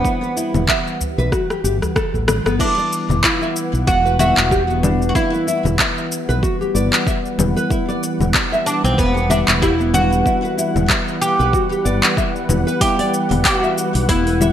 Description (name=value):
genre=organic downtempo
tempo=94 BPM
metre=4/4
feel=swing 56% on 16ths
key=E minor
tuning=A4 = 440 Hz
part: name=oud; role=melody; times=0.0-14.5 s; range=B3 to G4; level=-20 LUFS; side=right 1 dB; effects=digital delay
part: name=warm analog pad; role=sustained chords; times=0.0-14.5 s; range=E3 to F#5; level=-26 LUFS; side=right 1 dB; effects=chorus, sidechain pumping
part: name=nylon-string guitar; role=arpeggios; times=0.0-14.5 s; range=B3 to E5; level=-23 LUFS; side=left 1 dB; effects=lush chorus, digital delay
part: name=electronic kick drum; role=drums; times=0.0-14.2 s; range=none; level=-22 LUFS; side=equal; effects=overdrive
part: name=deep house drum kit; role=drums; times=0.1-14.5 s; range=congas, crash cymbal, handclaps, hi-hat, rim click, shaker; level=-20 LUFS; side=left 2 dB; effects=overdrive, gated reverb
part: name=mellow fretless electric bass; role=bass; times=0.5-14.5 s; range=E1 to B1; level=-19 LUFS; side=equal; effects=none
part: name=udu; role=percussion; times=1.0-2.3 s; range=none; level=-27 LUFS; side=equal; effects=none
part: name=muted felt-like synth keys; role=accompaniment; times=2.6-14.5 s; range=G3 to B4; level=-24 LUFS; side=left 2 dB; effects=chorus, sidechain pumping, digital delay
room=moderate lush hall reverb, RT60 1.8 s, digital ambience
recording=bright 1980s-style digital production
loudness=-15 LUFS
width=side -10 dB against mid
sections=0.0-2.6 A section; 2.6-14.5 B section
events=drum fill 1.3-2.6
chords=0.0 Em